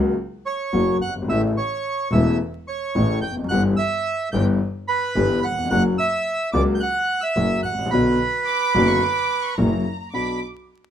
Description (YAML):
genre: tango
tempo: 108 BPM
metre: 4/4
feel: rubato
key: B minor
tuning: A4 = 438 Hz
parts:
  - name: dark concert grand piano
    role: accompaniment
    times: 0.0-10.4 s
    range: E1 to G4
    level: -22 LUFS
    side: left 2 dB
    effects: none
  - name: rich double bass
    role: bass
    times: 0.0-10.4 s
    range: E1 to C#2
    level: -24 LUFS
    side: equal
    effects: none
  - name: bandoneon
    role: melody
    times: 0.5-10.4 s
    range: B4 to G6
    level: -23 LUFS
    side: right 3 dB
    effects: none
  - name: warm studio violin section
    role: second line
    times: 8.5-10.4 s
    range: A#5 to D6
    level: -27 LUFS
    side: equal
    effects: none
room: moderate studio reverb, RT60 0.9 s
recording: minimal, uncompressed stereo recording, vinyl crackle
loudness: -19 LUFS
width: side -9 dB against mid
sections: 0.0-10.1 A section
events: none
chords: 0.0 F#; 1.3 A; 3.5 Em/G; 5.7 F#; 7.9 Bm; 9.6 F#7; 10.1 Bm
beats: 0.17 0.72 | 1.28 1.84 2.39 2.95 | 3.50 4.05 4.61 5.16 | 5.71 6.26 6.81 7.37 | 7.92 8.47 9.03 9.58 | 10.14